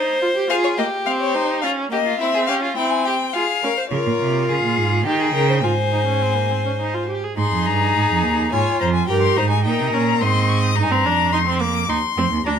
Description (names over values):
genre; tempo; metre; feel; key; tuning
classical, baroque-style fugue for string quartet; 106 BPM; 3/4; straight; F minor, Ab major from 3.9 s; A4 = 441 Hz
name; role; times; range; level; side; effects
clear violin; second line; 0.0-10.8 s; E4 to Eb5; -23 LUFS; left 2 dB; none
clear viola; accompaniment; 0.0-12.5 s; Bb3 to Ab4; -23 LUFS; right 3 dB; none
warm violin; melody; 0.5-12.6 s; C5 to Eb6; -22 LUFS; left 8 dB; none
clear cello; bass; 3.9-12.6 s; D2 to Eb3; -21 LUFS; right 4 dB; none
room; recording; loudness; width
moderate large studio reverb, RT60 1.3 s; minimal, uncompressed stereo recording; -17 LUFS; side -7 dB against mid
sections
0.0-3.9 A section; 3.9-7.4 B section; 7.4-12.6 C section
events
none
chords
0.0 Cm/Eb; 0.5 Fm; 1.6 Bbm/Db; 2.2 C; 3.3 Fm; 3.9 Db; 5.1 Eb7; 5.6 Ab; 8.5 Db/Ab; 9.1 Eb7/G; 10.2 Ab; 10.8 Eb; 11.9 Cmadd11/Eb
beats
| 0.50 1.07 1.63 | 2.20 2.77 3.35 | 3.92 4.49 5.06 | 5.64 6.21 6.79 | 7.38 7.95 8.52 | 9.08 9.65 10.21 | 10.77 11.32 11.89 | 12.46